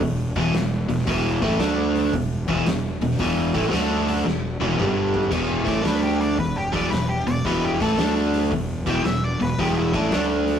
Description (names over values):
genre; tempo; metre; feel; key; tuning
blues rock power trio and southern rock; 113 BPM; 4/4; swing 66% on 8ths; unclear; A4 = 438 Hz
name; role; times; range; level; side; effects
biting overdriven guitar; riff; 0.0-10.6 s; E2 to D4; -22 LUFS; equal; none
fuzz fingered electric bass; bass; 0.0-10.6 s; E1 to D2; -27 LUFS; equal; overdrive
oversized low-tuned drum kit; drums; 0.0-10.6 s; crash cymbal, hi-hat, kick drum, snare drum, toms; -28 LUFS; equal; none
octave-fuzz lead guitar; melody; 5.7-10.2 s; D4 to G5; -27 LUFS; left 2 dB; distortion
room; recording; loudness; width
moderate small room ambience, RT60 0.5 s; rough rehearsal-room recording, tube saturation; -20 LUFS; side -8 dB against mid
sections
0.0-5.3 A section; 5.3-10.6 B section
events
drum fill 4.3-5.3; lead electric guitar solo 5.3-10.6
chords
0.0 E5; 1.6 D5; 2.1 E5; 3.7 D5; 4.3 E5; 4.8 G5; 5.3 E5; 5.9 D5; 6.4 E5; 8.0 D5; 8.5 E5